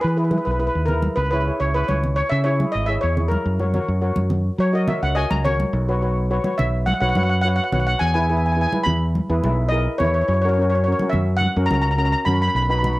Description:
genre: calypso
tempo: 105 BPM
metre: 4/4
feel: straight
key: B major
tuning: A4 = 441 Hz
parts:
  - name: steel pan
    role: melody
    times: 0.0-13.0 s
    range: A#4 to B5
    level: -22 LUFS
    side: equal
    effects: cassette tape
  - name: fingered electric bass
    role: bass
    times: 0.0-13.0 s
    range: G#1 to F#3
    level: -20 LUFS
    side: equal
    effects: none
  - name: steel pan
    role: accompaniment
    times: 0.2-13.0 s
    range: C#4 to D#5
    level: -26 LUFS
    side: left 1 dB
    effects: cassette tape
  - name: congas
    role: percussion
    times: 0.3-13.0 s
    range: none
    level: -26 LUFS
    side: equal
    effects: none
room: light reverb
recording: home recording on cassette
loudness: -18 LUFS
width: side -19 dB against mid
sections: 0.0-5.7 A section; 5.7-13.0 B section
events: steel pan solo 0.0-5.7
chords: 0.0 E; 1.2 C#m; 3.5 F#; 5.7 Bsus2; 8.0 E; 10.3 F#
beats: 0.03 0.60 | 1.17 1.74 2.31 2.88 | 3.45 4.02 4.59 5.16 | 5.73 6.30 6.87 7.44 | 8.01 8.57 9.14 9.71 | 10.28 10.85 11.42 11.98 | 12.55

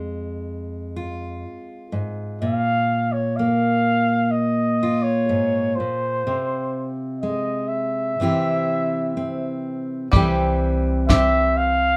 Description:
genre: acoustic folk duo or small band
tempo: 62 BPM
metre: 4/4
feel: straight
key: F minor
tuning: A4 = 440 Hz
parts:
  - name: fingerpicked steel-string acoustic guitar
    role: accompaniment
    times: 0.0-12.0 s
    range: F2 to G4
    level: -26 LUFS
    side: equal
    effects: none
  - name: mellow flugelhorn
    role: melody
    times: 2.4-12.0 s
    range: C5 to F5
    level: -24 LUFS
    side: equal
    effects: none
  - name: bluegrass banjo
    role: arpeggios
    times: 10.1-12.0 s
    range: G3 to G4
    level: -30 LUFS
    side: equal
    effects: none
  - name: upright bass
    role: bass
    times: 10.1-12.0 s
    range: C2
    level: -26 LUFS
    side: equal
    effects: none
  - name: soft brush drum kit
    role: drums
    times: 10.1-11.3 s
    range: kick drum, snare drum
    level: -20 LUFS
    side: equal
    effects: none
room: light reverb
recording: none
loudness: -22 LUFS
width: mono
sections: 0.0-10.1 A section; 10.1-12.0 B section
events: none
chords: 0.0 Fm; 2.4 Bb5; 6.3 Fm/C; 8.2 C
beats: 0.48 1.44 | 2.41 3.38 4.34 5.31 | 6.27 7.24 8.20 9.16 | 10.13 11.09

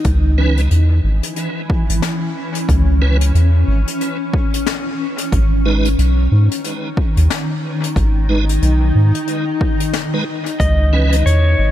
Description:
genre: ambient dub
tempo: 91 BPM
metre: 4/4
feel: swing 60% on 16ths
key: unclear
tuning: A4 = 440 Hz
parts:
  - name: granular cloud pad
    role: sustained chords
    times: 0.0-11.7 s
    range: B2 to D#4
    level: -22 LUFS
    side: left 1 dB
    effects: built-in reverb
  - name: soft dub sub bass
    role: bass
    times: 0.0-11.7 s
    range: G#1 to G#2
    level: -13 LUFS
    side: equal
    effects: none
  - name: soft brush drum kit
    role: drums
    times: 0.0-11.4 s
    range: hi-hat, snare drum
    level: -26 LUFS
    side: left 7 dB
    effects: dub echo
  - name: electronic kick drum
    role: drums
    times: 0.1-10.8 s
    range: none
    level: -18 LUFS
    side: equal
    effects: overdrive
  - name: tonewheel organ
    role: stabs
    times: 0.4-11.2 s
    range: E3 to B4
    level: -25 LUFS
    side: right 3 dB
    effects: overdrive, chorus vibrato, fast rotary speaker, dub echo
  - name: clean lap steel guitar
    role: melody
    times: 10.6-11.7 s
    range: C#5 to D#5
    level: -19 LUFS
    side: left 1 dB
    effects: dub echo
room: small room ambience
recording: none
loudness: -14 LUFS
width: side -12 dB against mid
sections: 0.0-11.7 A section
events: none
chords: 0.1 C#m7; 5.3 G#m; 10.6 C#m7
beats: | 0.05 0.71 1.37 2.03 | 2.69 3.35 4.01 4.67 | 5.33 5.98 6.64 7.30 | 7.96 8.62 9.28 9.94 | 10.60 11.26

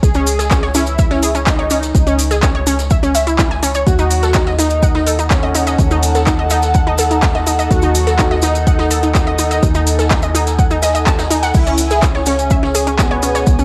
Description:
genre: melodic techno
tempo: 125 BPM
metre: 4/4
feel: straight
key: unclear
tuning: A4 = 439 Hz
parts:
  - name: fat analog lead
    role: melody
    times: 0.0-13.6 s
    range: B3 to G#4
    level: -23 LUFS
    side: equal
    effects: ensemble chorus, cassette tape, analog delay
  - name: tight sequencer bass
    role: bass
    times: 0.0-13.6 s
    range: C#2 to D#2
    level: -21 LUFS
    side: equal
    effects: tube saturation, sidechain pumping
  - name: deep house drum kit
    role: drums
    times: 0.0-13.6 s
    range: crash cymbal, handclaps, hi-hat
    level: -24 LUFS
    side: equal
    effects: overdrive, cassette tape
  - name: electronic kick drum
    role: drums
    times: 0.0-13.6 s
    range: none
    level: -17 LUFS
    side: equal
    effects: overdrive, cassette tape
  - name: open jazz drum kit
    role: drums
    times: 0.0-13.6 s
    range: hi-hat, snare drum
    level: -34 LUFS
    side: equal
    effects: none
  - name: maracas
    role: percussion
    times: 0.0-13.6 s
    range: none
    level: -27 LUFS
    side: equal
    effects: none
  - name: analog pluck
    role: arpeggios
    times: 0.1-13.6 s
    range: C#4 to A5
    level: -21 LUFS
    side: equal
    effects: chorus, sidechain pumping, analog delay
  - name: airy breathy pad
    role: texture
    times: 5.1-13.6 s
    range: C#4 to A5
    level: -23 LUFS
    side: equal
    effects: chorus, sidechain pumping
room: moderate spring reverb, RT60 1.6 s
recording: home recording on cassette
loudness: -14 LUFS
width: mono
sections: 0.0-13.6 A section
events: none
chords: 0.0 C#m; 3.9 D#dim; 11.5 C#m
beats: | 0.03 0.51 0.99 1.47 | 1.95 2.43 2.91 3.39 | 3.87 4.35 4.83 5.31 | 5.79 6.27 6.75 7.23 | 7.71 8.19 8.67 9.15 | 9.63 10.11 10.59 11.07 | 11.55 12.03 12.51 12.99 | 13.47

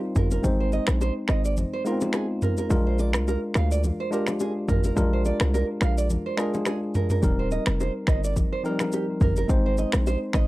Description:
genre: afrobeats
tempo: 106 BPM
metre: 4/4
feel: swing 55% on 16ths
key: Bb mixolydian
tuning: A4 = 441 Hz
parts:
  - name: tine electric piano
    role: accompaniment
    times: 0.0-10.5 s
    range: F3 to C5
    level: -28 LUFS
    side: left 1 dB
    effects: none
  - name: nylon-string guitar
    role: riff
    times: 0.2-10.5 s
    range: G4 to F5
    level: -32 LUFS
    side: right 6 dB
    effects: tape echo
  - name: hard-hitting 808-style bass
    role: bass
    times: 0.2-10.5 s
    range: Eb1 to D2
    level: -24 LUFS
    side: equal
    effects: none
  - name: afro-pop drum kit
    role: drums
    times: 0.2-10.5 s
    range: finger snaps, kick drum, rim click, shaker, toms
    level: -25 LUFS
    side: equal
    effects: none
  - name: bongos and congas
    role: percussion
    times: 0.2-10.2 s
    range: none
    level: -33 LUFS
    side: left 2 dB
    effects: none
room: little or no reverb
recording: dry, gritty hardware recording, cassette tape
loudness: -22 LUFS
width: side -18 dB against mid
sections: 0.0-10.5 A section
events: break 0.0-7.2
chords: 0.4 Ab; 2.7 Bb7; 7.2 Eb6; 9.5 Ab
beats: | 0.44 1.00 1.57 2.14 | 2.70 3.27 3.83 4.40 | 4.97 5.53 6.10 6.66 | 7.23 7.80 8.36 8.93 | 9.49 10.06

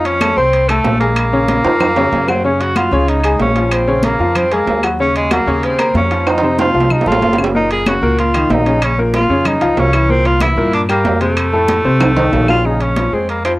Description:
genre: latin, salsa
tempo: 188 BPM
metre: 4/4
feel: straight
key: Bb minor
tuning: A4 = 439 Hz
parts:
  - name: clear tenor saxophone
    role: melody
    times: 0.0-13.5 s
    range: Ab3 to Ab4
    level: -16 LUFS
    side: equal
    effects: cassette tape, plate reverb
  - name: clear upright piano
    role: accompaniment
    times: 0.0-13.6 s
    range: A2 to C6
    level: -17 LUFS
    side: left 2 dB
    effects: cassette tape, plate reverb
  - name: upright bass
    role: bass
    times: 0.0-13.6 s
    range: Gb1 to G2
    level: -18 LUFS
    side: equal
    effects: none
  - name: congas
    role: percussion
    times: 0.0-13.6 s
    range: none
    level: -24 LUFS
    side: left 1 dB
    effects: none
  - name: timbales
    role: percussion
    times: 0.1-13.6 s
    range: none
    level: -20 LUFS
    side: right 4 dB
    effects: none
  - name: claves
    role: percussion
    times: 0.2-12.6 s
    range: none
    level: -24 LUFS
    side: left 3 dB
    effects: none
room: light reverb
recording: home recording on cassette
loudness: -11 LUFS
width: side -19 dB against mid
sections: 0.0-2.4 A section; 2.4-12.6 B section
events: drum fill 1.6-2.4, 6.3-7.5, 12.0-12.6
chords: 0.0 F; 1.2 Bbm7; 5.0 Ebm7; 6.3 F; 7.5 Gb6; 8.8 Bbm; 10.1 C7; 11.4 F7; 12.6 Bbm7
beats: 0.21 0.53 0.85 | 1.17 1.49 1.80 2.12 | 2.44 2.76 3.08 3.40 | 3.72 4.04 4.35 4.67 | 4.99 5.31 5.63 5.95 | 6.27 6.58 6.90 7.22 | 7.54 7.86 8.18 8.50 | 8.82 9.13 9.45 9.77 | 10.09 10.41 10.73 11.05 | 11.37 11.69 12.01 12.32 | 12.64 12.96 13.28

